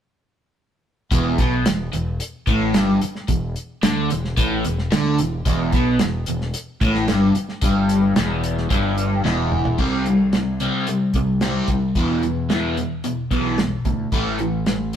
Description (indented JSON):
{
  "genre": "classic rock",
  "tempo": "111 BPM",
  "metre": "4/4",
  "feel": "straight",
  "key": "E minor",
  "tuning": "A4 = 440 Hz",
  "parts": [
    { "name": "crunchy overdriven guitar", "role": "riff", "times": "1.1-14.9 s", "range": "E2 to C4", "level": "-20 LUFS", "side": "equal", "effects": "phaser" },
    { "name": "growling fingered electric bass", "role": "bass", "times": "1.1-15.0 s", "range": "E1 to E2", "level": "-26 LUFS", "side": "equal", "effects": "overdrive" },
    { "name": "damped 70s drum kit", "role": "drums", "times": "1.1-15.0 s", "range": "crash cymbal, hi-hat, kick drum, snare drum, toms", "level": "-22 LUFS", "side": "right 1 dB", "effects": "none" }
  ],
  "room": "moderate stone room reverb, RT60 1.2 s",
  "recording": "rough rehearsal-room recording",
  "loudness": "-18 LUFS",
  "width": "side -9 dB against mid",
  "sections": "1.1-9.8 A section; 9.8-15.0 B section",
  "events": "drum fill 9.2-9.8",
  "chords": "1.1 Em; 9.8 C5; 12.0 E5; 14.1 A5",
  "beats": "| 1.12 1.67 2.21 2.75 | 3.29 3.84 4.38 4.92 | 5.46 6.00 6.54 7.08 | 7.62 8.17 8.71 9.25 | 9.79 10.33 10.87 11.41 | 11.96 12.50 13.04 13.58 | 14.12 14.66"
}